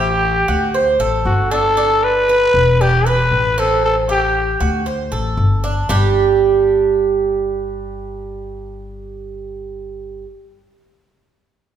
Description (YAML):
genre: latin, Cuban son and guajira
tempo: 116 BPM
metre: 4/4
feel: straight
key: G major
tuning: A4 = 440 Hz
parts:
  - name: growling trumpet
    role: melody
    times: 0.0-4.8 s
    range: F#4 to B4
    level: -16 LUFS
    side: left 1 dB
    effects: none
  - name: Cuban tres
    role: arpeggios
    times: 0.0-10.2 s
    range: G3 to D5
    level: -19 LUFS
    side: right 5 dB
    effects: none
  - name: upright bass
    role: bass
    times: 0.0-10.2 s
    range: E1 to D2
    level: -20 LUFS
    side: left 1 dB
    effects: none
room: wet recital hall reverb, RT60 1.5 s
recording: recorded in a church or concert hall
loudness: -13 LUFS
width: side -9 dB against mid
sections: 0.0-5.9 A section; 5.9-10.0 B section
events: none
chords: 0.0 A7(no3); 0.7 D5; 1.8 G; 2.8 E5; 3.8 Am7; 4.9 D5; 5.9 G5